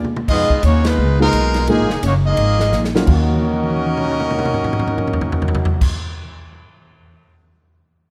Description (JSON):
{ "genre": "jazz, big band swing", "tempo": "171 BPM", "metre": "4/4", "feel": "swing 62% on 8ths", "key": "Eb minor", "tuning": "A4 = 440 Hz", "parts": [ { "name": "dark trombone section", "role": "second line", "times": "0.0-5.8 s", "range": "Cb3 to Gb4", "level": "-26 LUFS", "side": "equal", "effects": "none" }, { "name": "upright bass", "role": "bass", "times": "0.0-5.8 s", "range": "F1 to F2", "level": "-20 LUFS", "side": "equal", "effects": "none" }, { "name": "swinging big-band drum kit", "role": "drums", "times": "0.0-7.3 s", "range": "crash cymbal, hi-hat, kick drum, ride cymbal, snare drum, toms", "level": "-23 LUFS", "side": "equal", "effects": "none" }, { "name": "bright trumpet section", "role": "melody", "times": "0.3-5.8 s", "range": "Ab3 to Eb5", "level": "-24 LUFS", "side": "equal", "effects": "none" }, { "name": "warm concert grand piano", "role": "accompaniment", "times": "1.2-5.9 s", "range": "Eb2 to F5", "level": "-24 LUFS", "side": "equal", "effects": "none" } ], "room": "light reverb", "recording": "none", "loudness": "-17 LUFS", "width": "mono", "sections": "0.3-3.1 A section; 3.1-5.9 B section", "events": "drum fill 0.0, 2.7-3.1, 3.3-5.8; band accent 0.8", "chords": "0.3 Fm7b5; 1.7 Bb7sus4; 3.1 Ebm9" }